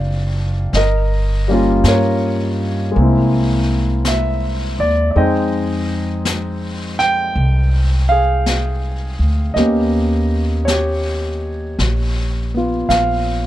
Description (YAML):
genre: jazz ballad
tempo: 54 BPM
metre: 4/4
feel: swing 67% on 8ths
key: Eb major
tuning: A4 = 438 Hz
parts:
  - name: warm concert grand piano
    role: accompaniment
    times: 0.0-13.5 s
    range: D3 to G5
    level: -18 LUFS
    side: equal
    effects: none
  - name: upright bass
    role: bass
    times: 0.0-13.5 s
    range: Gb1 to G2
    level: -18 LUFS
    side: equal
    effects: none
  - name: vintage brush drum kit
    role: drums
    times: 0.7-13.5 s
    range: brushed snare drum, hi-hat, snare drum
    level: -26 LUFS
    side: left 3 dB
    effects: none
room: light reverb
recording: dark, warm production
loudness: -15 LUFS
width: side -14 dB against mid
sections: 0.0-13.5 A section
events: none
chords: 0.0 Ebmaj7; 0.7 Gm7b5; 2.9 C7alt; 5.1 Fm9; 9.6 Eb7b13